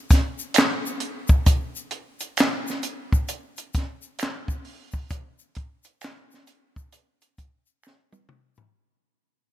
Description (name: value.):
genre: R&B.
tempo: 66 BPM.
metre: 4/4.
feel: swing 64% on 16ths.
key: none.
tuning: none.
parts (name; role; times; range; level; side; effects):
compact cocktail drum kit; drums; 0.1-8.7 s; handclaps, hi-hat, kick drum, snare drum, toms; -20 LUFS; equal; none.
tube shaker and finger snaps; percussion; 0.1-8.7 s; none; -30 LUFS; right 2 dB; none.
room: light reverb.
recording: none.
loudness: -22 LUFS.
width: side -13 dB against mid.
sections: 0.0-8.7 A section.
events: fade-out 0.0-8.7; drum fill 7.8-8.7.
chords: none.